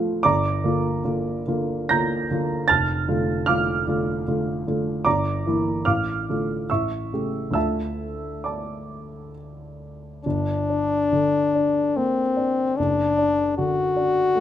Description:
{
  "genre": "classical, romantic duo for French horn and grand piano",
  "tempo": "66-78 BPM",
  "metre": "3/4",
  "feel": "rubato",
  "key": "D minor, G minor from 10.2 s",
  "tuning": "A4 = 440 Hz",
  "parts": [
    { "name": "dark grand piano", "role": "accompaniment", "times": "0.0-14.4 s", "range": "F1 to Bb6", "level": "-23 LUFS", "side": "right 1 dB", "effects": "none" },
    { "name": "clear French horn", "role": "melody", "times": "10.2-14.4 s", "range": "C4 to F#4", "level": "-20 LUFS", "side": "left 3 dB", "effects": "none" }
  ],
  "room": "moderate large studio reverb, RT60 1.2 s",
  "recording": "close, detailed microphones",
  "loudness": "-20 LUFS",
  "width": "side -10 dB against mid",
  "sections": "0.0-10.2 A section; 10.2-14.4 B section",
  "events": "none",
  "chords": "0.2 Gm7; 2.7 Dm/F; 5.1 Em7b5/G; 5.8 Dm/A; 6.7 A7; 7.5 Dm; 10.2 Gm; 12.8 D/F#"
}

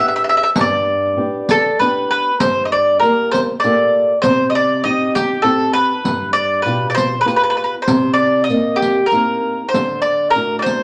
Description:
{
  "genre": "italian folk, Italian serenade",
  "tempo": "98 BPM",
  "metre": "3/4",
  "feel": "rubato",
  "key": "unclear",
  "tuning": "A4 = 440 Hz",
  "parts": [
    { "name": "mandolin", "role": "melody", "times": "0.0-10.8 s", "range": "G4 to E5", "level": "-17 LUFS", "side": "equal", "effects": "none" },
    { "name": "flamenco guitar", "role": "accompaniment", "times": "0.0-10.8 s", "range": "G2 to Bb4", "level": "-23 LUFS", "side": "equal", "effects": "none" },
    { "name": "riq", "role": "percussion", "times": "0.6-10.8 s", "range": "none", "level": "-25 LUFS", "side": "equal", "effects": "none" }
  ],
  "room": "wet club reverb, RT60 0.8 s",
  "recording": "none",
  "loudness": "-16 LUFS",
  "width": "mono",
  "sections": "0.0-2.4 A section; 2.4-10.8 B section",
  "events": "none",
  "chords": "0.0 G; 2.4 Gmadd9; 4.2 Cm; 6.0 G7; 7.9 Cm7; 9.7 D"
}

